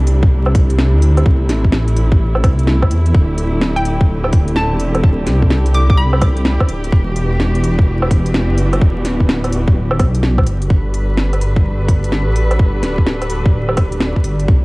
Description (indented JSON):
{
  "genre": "future garage",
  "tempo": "127 BPM",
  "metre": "4/4",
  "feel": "swing 64% on 16ths",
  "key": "unclear",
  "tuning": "A4 = 441 Hz",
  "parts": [
    { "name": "dark studio string section", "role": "sustained chords", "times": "0.0-14.6 s", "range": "C3 to B4", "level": "-22 LUFS", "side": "equal", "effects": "vintage 12-bit sampler grit, sidechain pumping" },
    { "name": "dark detuned saw bass", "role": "bass", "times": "0.0-14.6 s", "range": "D1 to E2", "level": "-15 LUFS", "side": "equal", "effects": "sidechain pumping" },
    { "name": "organic electronic drum kit", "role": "drums", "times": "0.1-14.5 s", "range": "hi-hat, snare drum, woodblock", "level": "-20 LUFS", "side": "equal", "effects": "overdrive, studio reverb" },
    { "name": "electronic kick drum", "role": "drums", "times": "0.2-14.6 s", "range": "none", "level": "-13 LUFS", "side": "equal", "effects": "overdrive, studio reverb" },
    { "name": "hollow square pluck", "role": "melody", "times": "3.8-6.4 s", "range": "G5 to D6", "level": "-24 LUFS", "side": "left 1 dB", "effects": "chorus, tape echo" }
  ],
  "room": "little or no reverb",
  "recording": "vinyl crackle",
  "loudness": "-12 LUFS",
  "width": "side -24 dB against mid",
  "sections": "0.0-10.7 A section; 10.7-14.6 B section",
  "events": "none",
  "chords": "0.0 C6; 3.1 D7sus4; 6.9 Em7; 10.7 Gmaj7"
}